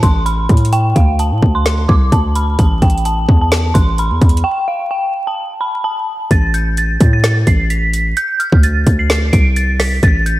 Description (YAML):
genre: hip hop, trap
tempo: 129 BPM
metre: 4/4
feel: half-time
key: A minor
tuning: A4 = 439 Hz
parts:
  - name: dark detuned synth bell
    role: melody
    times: 0.0-10.4 s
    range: F5 to D7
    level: -18 LUFS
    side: right 1 dB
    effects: chorus, tape echo
  - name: hard-hitting 808-style bass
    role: bass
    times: 0.0-10.4 s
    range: A1 to A2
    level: -14 LUFS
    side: equal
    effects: none
  - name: trap drum kit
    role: drums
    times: 0.0-10.4 s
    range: hi-hat, kick drum, snare drum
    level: -13 LUFS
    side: equal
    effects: none
room: moderate lush hall reverb, RT60 1.9 s, digital ambience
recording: dreamy mix soaked in reverb, vinyl crackle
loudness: -11 LUFS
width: side -16 dB against mid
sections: 0.0-6.3 A section; 6.3-10.4 B section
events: break 4.4-6.3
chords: 0.0 Asus2; 0.7 D5; 2.6 Asus2; 4.4 N.C.; 6.3 Asus2; 8.2 F6 (rootless)